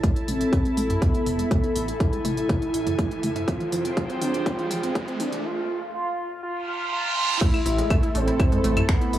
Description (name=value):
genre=melodic techno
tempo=122 BPM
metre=4/4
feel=straight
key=A harmonic minor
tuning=A4 = 440 Hz
part: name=expressive portamento lead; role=melody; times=0.0-9.2 s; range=B3 to F4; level=-27 LUFS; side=right 1 dB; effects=lush chorus, analog delay
part: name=evolving wavetable pad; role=sustained chords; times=0.0-9.2 s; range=C3 to A5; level=-33 LUFS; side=equal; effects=chorus, built-in reverb, sidechain pumping
part: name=wide unison pluck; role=arpeggios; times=0.0-9.2 s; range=E3 to E4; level=-31 LUFS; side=equal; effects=sidechain pumping, tape echo
part: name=electronic kick drum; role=drums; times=0.0-9.0 s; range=none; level=-22 LUFS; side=equal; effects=none
part: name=house drum kit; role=drums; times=0.0-9.2 s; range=claves, crash cymbal, finger snaps, hi-hat, toms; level=-31 LUFS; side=equal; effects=none
part: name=riser and reverse cymbal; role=sound effects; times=1.1-7.4 s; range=none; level=-32 LUFS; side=right 4 dB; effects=none
part: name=warbly tape-like pad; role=texture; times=0.0-9.2 s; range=F4 to B5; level=-34 LUFS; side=left 3 dB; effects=chorus, built-in reverb, sidechain pumping
part: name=swelling detuned saw bass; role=bass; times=0.3-9.2 s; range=E1 to C2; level=-29 LUFS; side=equal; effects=sidechain pumping
part: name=airy dreamy lead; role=second line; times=7.4-9.2 s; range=B4 to E5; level=-34 LUFS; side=equal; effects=chorus, sidechain pumping, tape echo
room=light reverb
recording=dry, gritty hardware recording, high-pass filter, small room ambience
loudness=-22 LUFS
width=side -12 dB against mid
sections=0.0-7.4 A section; 7.4-9.2 B section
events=build-up 0.0-7.4; drum fill 0.0-5.4; filter sweep on synth pluck 0.0-7.4; filter sweep on analog synth lead 0.0-7.4; filter sweep 0.0-7.4; riser 1.1-5.4; reverse cymbal 6.6-7.4; drop 7.4-9.2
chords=0.0 A5; 3.5 Fmadd9; 7.4 Am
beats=0.04 0.53 1.02 | 1.51 2.00 2.49 2.99 | 3.48 3.97 4.46 4.95 | 5.45 5.94 6.43 6.92 | 7.41 7.90 8.40 8.89